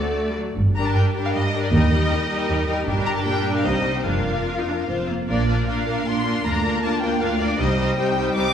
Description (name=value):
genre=quick classical-period movement for string orchestra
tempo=156 BPM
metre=3/4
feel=rubato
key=Bb major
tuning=A4 = 438 Hz
part: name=rich symphonic violin section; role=melody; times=0.0-8.5 s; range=D5 to D6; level=-27 LUFS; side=left 3 dB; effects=none
part: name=rich symphonic violin section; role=second line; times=0.0-8.5 s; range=F4 to C5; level=-26 LUFS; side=left 3 dB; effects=none
part: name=clear symphonic viola section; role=accompaniment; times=0.0-8.5 s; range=F#3 to F4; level=-26 LUFS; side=right 1 dB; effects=none
part: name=rich symphonic cello section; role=bass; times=0.0-8.5 s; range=C2 to C3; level=-26 LUFS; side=right 2 dB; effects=none
part: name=rich symphonic double bass section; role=bass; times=0.6-7.9 s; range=F1 to Eb2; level=-24 LUFS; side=right 1 dB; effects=none
room=wet recital hall reverb, RT60 1.3 s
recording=recorded in a church or concert hall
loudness=-19 LUFS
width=side -8 dB against mid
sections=0.0-5.3 A section; 5.3-8.5 B section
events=none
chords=0.0 D; 0.6 Gm; 1.7 Eb; 2.9 Gm; 3.6 Cm; 4.1 Bb/F; 4.9 F5; 5.3 Bb; 6.5 Bb/D; 7.6 Cm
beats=0.17 | 0.57 0.96 1.34 | 1.73 2.11 2.49 | 2.87 3.25 3.65 | 4.06 4.47 4.88 | 5.29 5.68 6.07 | 6.45 6.83 7.21 | 7.60 7.98 8.36